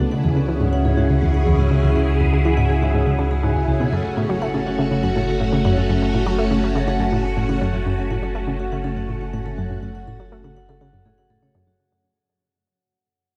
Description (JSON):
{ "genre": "ambient, sequencer-driven space music", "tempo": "122 BPM", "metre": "4/4", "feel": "straight", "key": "F# minor", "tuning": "A4 = 440 Hz", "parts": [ { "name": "phased string machine", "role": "sustained chords", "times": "0.0-11.8 s", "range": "C#3 to G#4", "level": "-25 LUFS", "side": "equal", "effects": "ensemble chorus, phaser" }, { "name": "vibraphone with medium hard mallets", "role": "arpeggios", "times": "0.0-11.8 s", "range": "F#4 to F#5", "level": "-31 LUFS", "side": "equal", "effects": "delay" }, { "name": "analog pluck", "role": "riff", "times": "0.0-11.7 s", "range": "C#2 to A3", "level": "-24 LUFS", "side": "equal", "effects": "chorus, delay" }, { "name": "warm sub bass", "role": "bass", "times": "0.0-11.8 s", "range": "F#1 to C#2", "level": "-26 LUFS", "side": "equal", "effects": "tube saturation" } ], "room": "wet cathedral reverb, RT60 5.5 s", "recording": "dreamy mix soaked in reverb", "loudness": "-20 LUFS", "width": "mono", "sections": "0.0-11.8 A section", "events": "fade-out 6.5-11.8", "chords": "0.0 C#m; 3.9 F#m", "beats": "0.48 0.97 1.47 | 1.96 2.45 2.94 3.43 | 3.93 4.42 4.91 5.40 | 5.89 6.38 6.88 7.37 | 7.86 8.35 8.84 9.34 | 9.83 10.32 10.81 11.30" }